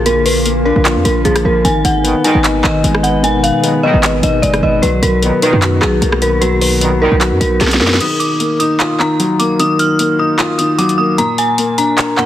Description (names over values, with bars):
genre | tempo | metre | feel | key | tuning
hip hop, trap | 151 BPM | 4/4 | half-time | Eb harmonic minor | A4 = 440 Hz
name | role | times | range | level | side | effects
felt-muted upright piano | accompaniment | 0.0-12.3 s | Bb2 to F5 | -16 LUFS | left 2 dB | none
ethereal airy pad | sustained chords | 0.0-8.0 s | Cb3 to A#5 | -23 LUFS | equal | ensemble chorus, built-in reverb
hard-hitting 808-style bass | bass | 0.0-8.0 s | Gb1 to F#2 | -16 LUFS | equal | none
dark detuned synth bell | melody | 0.1-12.3 s | Ab4 to F6 | -16 LUFS | equal | chorus
trap drum kit | drums | 0.1-12.3 s | crash cymbal, handclaps, hi-hat, rim click, snare drum | -17 LUFS | equal | none
warm brass ensemble | stabs | 2.0-7.1 s | B1 to Eb3 | -20 LUFS | right 2 dB | digital delay
room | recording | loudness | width
light reverb | dense, heavily limited modern master, vinyl crackle | -10 LUFS | side -12 dB against mid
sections
0.0-8.0 A section; 8.0-12.3 B section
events
drum fill 7.6-8.0; kick muted 8.0-12.3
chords
0.0 Bb; 1.6 Abm; 4.8 Bmaj7; 8.0 Ebmadd9; 11.2 Bb